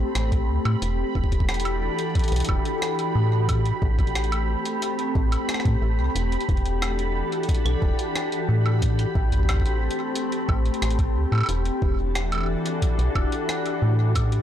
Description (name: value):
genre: IDM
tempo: 90 BPM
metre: 4/4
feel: straight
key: E minor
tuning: A4 = 440 Hz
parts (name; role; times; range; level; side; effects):
- glassy FM pad; sustained chords; 0.0-14.4 s; E3 to A4; -27 LUFS; left 2 dB; ensemble chorus, built-in reverb
- metallic FM bass; bass; 0.0-14.4 s; E1 to A2; -23 LUFS; equal; tube saturation
- bubbling stepped-filter texture; texture; 0.0-14.4 s; B5; -34 LUFS; right 10 dB; chorus, built-in reverb, sidechain pumping
- jungle sampler-style drum kit; drums; 0.2-14.4 s; hi-hat, rim click, woodblock; -31 LUFS; right 1 dB; digital delay
- electronic kick drum; drums; 0.3-14.3 s; none; -24 LUFS; equal; none
room: digital ambience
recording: blown-out, overdriven recording, overdrive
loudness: -21 LUFS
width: side -10 dB against mid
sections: 0.0-14.4 A section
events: none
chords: 0.0 Am11; 0.8 Em11; 3.5 Am9; 6.2 Em11; 8.8 Am9; 11.5 Em11